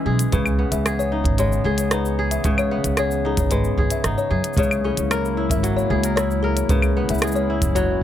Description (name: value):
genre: folktronica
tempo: 113 BPM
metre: 4/4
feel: straight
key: C# dorian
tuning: A4 = 438 Hz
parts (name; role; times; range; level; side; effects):
- warbly tape-like pad; sustained chords; 0.0-8.0 s; C#3 to A#4; -28 LUFS; equal; chorus, built-in reverb
- kora; arpeggios; 0.0-8.0 s; C#3 to A#4; -26 LUFS; equal; ping-pong delay, plate reverb
- upright bass; bass; 0.1-7.9 s; F#1 to F#2; -22 LUFS; equal; none
- minimal click drum kit; drums; 0.2-7.9 s; cabasa, claves, hi-hat, rim click; -26 LUFS; equal; none
- music box; second line; 0.3-7.9 s; G#4 to E5; -25 LUFS; left 6 dB; ping-pong delay, plate reverb
- kick drum; drums; 0.3-7.9 s; none; -23 LUFS; right 1 dB; none
room: light reverb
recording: none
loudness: -18 LUFS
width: side -11 dB against mid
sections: 0.0-8.0 A section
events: none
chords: 0.3 C#m9; 4.6 F#7; 6.7 E6/C#